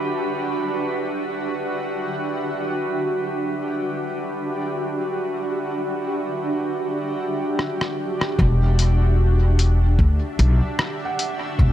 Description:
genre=ambient dub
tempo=75 BPM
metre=4/4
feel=swing 56% on 16ths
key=E minor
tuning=A4 = 441 Hz
part: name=granular cloud pad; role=sustained chords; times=0.0-11.7 s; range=D4 to E5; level=-24 LUFS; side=equal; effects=built-in reverb, vintage 12-bit sampler grit
part: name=drifting glass-harmonics texture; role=texture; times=0.0-6.8 s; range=B4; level=-34 LUFS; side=right 4 dB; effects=chorus, built-in reverb
part: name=lo-fi sampler-style drum kit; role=drums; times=7.6-11.4 s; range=hi-hat, rim click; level=-26 LUFS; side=left 1 dB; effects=dub echo
part: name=upright bass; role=bass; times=8.4-11.7 s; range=E1 to D2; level=-16 LUFS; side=equal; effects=none
part: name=electronic kick drum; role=drums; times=8.4-11.7 s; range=none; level=-19 LUFS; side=equal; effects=none
part: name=felt-muted upright piano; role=arpeggios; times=11.0-11.7 s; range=F#5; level=-29 LUFS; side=right 4 dB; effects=none
room=light reverb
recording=none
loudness=-20 LUFS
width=side -12 dB against mid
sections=0.0-8.4 A section; 8.4-11.7 B section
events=drum fill 7.6-8.4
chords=0.0 Em9

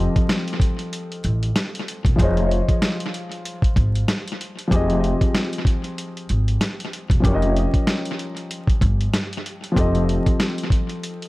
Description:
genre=hip hop, boom-bap hip-hop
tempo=95 BPM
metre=4/4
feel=swing 57% on 16ths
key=F minor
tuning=A4 = 440 Hz
part: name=dark concert grand piano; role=accompaniment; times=0.0-11.3 s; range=F3 to Eb5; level=-25 LUFS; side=left 1 dB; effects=cassette tape, high-pass filter, low-pass filter, tape echo
part: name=upright bass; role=bass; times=0.0-10.2 s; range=E1 to A1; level=-21 LUFS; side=equal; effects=none
part: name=dusty soul sampler-style drum kit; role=drums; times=0.2-11.3 s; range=hi-hat, kick drum, snare drum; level=-21 LUFS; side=equal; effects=tape echo
room=small room reverb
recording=echo-heavy mix, vinyl crackle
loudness=-18 LUFS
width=side -20 dB against mid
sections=0.0-11.3 A section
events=none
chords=0.0 F7; 2.2 Dbmaj9/F; 4.7 Fm7; 7.2 Eb7/F; 9.8 F7

